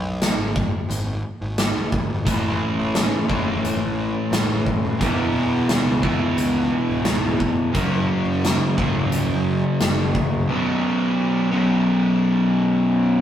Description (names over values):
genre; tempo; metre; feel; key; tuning
classic rock; 88 BPM; 4/4; straight; unclear; A4 = 440 Hz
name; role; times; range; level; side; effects
fuzz picked electric bass; bass; 0.0-10.5 s; C1 to F#2; -28 LUFS; equal; overdrive
big rock drum kit; drums; 0.2-10.3 s; hi-hat, kick drum, snare drum; -23 LUFS; equal; none
sludgy distorted guitar; riff; 2.3-13.2 s; B1 to A3; -19 LUFS; equal; overdrive
room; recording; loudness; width
moderate stone room reverb, RT60 1.1 s; rough rehearsal-room recording; -18 LUFS; side -10 dB against mid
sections
0.0-13.2 A section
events
none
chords
0.0 N.C.; 2.3 A5; 5.0 E5; 7.7 F#5; 10.5 B5